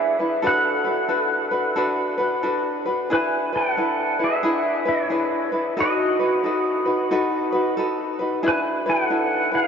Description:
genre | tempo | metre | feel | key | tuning
Hawaiian | 90 BPM | 4/4 | swing 64% on 8ths | unclear | A4 = 440 Hz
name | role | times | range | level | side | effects
pedal steel guitar | melody | 0.0-9.7 s | E4 to G#5 | -22 LUFS | right 1 dB | lush chorus, diffuse ambient delay
tenor ukulele | accompaniment | 0.0-9.7 s | D4 to B4 | -22 LUFS | left 1 dB | none
room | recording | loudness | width
wet huge ambient reverb, RT60 8.2 s | dreamy mix soaked in reverb, nothing above 7.5 kHz | -19 LUFS | side -6 dB against mid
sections
0.0-9.7 A section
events
none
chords
0.4 Bm7; 3.1 E7; 5.8 B7/D#; 8.4 E7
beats
| 0.44 1.10 1.77 2.44 | 3.10 3.77 4.43 5.10 | 5.76 6.43 7.09 7.76 | 8.43 9.09

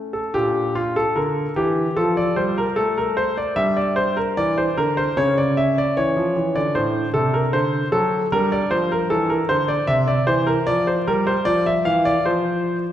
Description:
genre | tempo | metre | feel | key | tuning
classical, baroque-style suite movement for grand piano | 76 BPM | 4/4 | rubato | D minor | A4 = 438 Hz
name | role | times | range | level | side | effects
clear concert grand piano | solo | 0.0-12.9 s | A2 to F5 | -18 LUFS | equal | none
room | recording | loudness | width
wet concert hall reverb, RT60 2.0 s | recorded in a church or concert hall | -18 LUFS | side -11 dB against mid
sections
0.3-12.9 A section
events
none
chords
0.3 Bb; 2.0 F; 3.6 C9; 5.2 C#m; 6.7 D7/A; 8.3 G5; 9.9 C; 11.5 Dm9/E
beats
| 0.34 1.16 1.96 2.76 | 3.56 4.36 5.17 5.96 | 6.75 7.53 8.32 9.10 | 9.89 10.67 11.47 12.25

